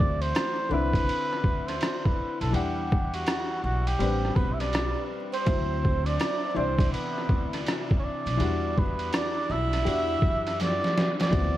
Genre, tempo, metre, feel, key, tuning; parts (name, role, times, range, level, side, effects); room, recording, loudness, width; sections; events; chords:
hip hop, jazz-hop; 82 BPM; 4/4; swing 64% on 16ths; E minor; A4 = 440 Hz
trumpet with cup mute; melody; 0.0-11.6 s; F#4 to E5; -30 LUFS; right 1 dB
clear upright piano; accompaniment; 0.0-11.6 s; C3 to F#5; -32 LUFS; left 4 dB
upright bass; bass; 0.0-11.6 s; A1 to F#2; -30 LUFS; equal
trip hop sampler-style drum kit; drums; 0.0-11.5 s; hi-hat, kick drum, ride cymbal, rim click, snare drum; -28 LUFS; equal; overdrive
breathy tenor saxophone; second line; 4.3-11.0 s; B3 to E4; -36 LUFS; right 8 dB
light reverb, small room ambience; dark, warm production, vinyl crackle; -24 LUFS; side -14 dB against mid
0.0-11.3 A section
drum fill 10.6-11.3
0.0 D9; 0.7 Cmaj9; 2.5 Em9; 4.0 Am11; 5.5 D9; 6.6 Cmaj9; 8.4 Em9